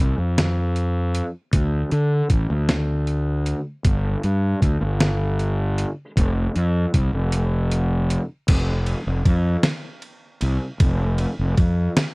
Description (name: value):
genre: psychedelic rock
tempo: 52 BPM (dotted quarters)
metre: 6/8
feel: straight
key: unclear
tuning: A4 = 440 Hz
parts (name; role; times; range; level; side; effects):
- fuzz fingered electric bass; bass; 0.0-11.9 s; F1 to D3; -20 LUFS; equal; overdrive
- trip hop sampler-style drum kit; drums; 0.4-12.1 s; crash cymbal, hi-hat, kick drum, ride cymbal, snare drum; -20 LUFS; equal; none
room: little or no reverb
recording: dry, close 1970s-style studio recording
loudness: -19 LUFS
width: side -33 dB against mid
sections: 0.0-8.5 A section; 8.5-12.1 B section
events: kick and snare drop out 7.3-8.5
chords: none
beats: 0.37 | 1.53 2.69 | 3.85 5.01 | 6.17 7.33 | 8.49 9.65 | 10.81 11.97